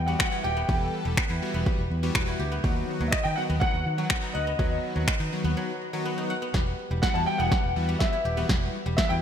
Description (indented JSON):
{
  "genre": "dance-pop",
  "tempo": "123 BPM",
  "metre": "4/4",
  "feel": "straight",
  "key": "E harmonic minor",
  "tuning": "A4 = 440 Hz",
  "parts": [
    { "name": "warm concert grand piano", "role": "melody", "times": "0.0-9.1 s", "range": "D#5 to A5", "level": "-30 LUFS", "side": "equal", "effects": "ensemble chorus, ping-pong delay" },
    { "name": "guzheng", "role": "arpeggios", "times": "0.0-9.2 s", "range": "F#3 to F#5", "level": "-34 LUFS", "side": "equal", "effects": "sidechain pumping, ping-pong delay" },
    { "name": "vintage muted fingered electric bass", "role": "bass", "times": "0.0-9.2 s", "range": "D#1 to D#3", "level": "-29 LUFS", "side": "equal", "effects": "sidechain pumping" },
    { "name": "big bright polysynth", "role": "accompaniment", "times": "0.1-9.2 s", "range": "D#3 to A4", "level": "-33 LUFS", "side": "left 1 dB", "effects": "chorus, sidechain pumping" },
    { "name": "deep house drum kit", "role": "drums", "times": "0.2-9.1 s", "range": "finger snaps, kick drum, snare drum", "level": "-26 LUFS", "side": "equal", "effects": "overdrive" }
  ],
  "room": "moderate lush hall reverb, RT60 2.0 s",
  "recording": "bright 1980s-style digital production",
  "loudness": "-24 LUFS",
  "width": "side -8 dB against mid",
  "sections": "0.0-6.5 A section; 6.5-9.2 B section",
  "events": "break 5.6-6.5; build-up 6.5-9.2; drum fill 6.5-9.2",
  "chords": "0.0 Emadd9; 2.6 B; 6.5 Emadd9"
}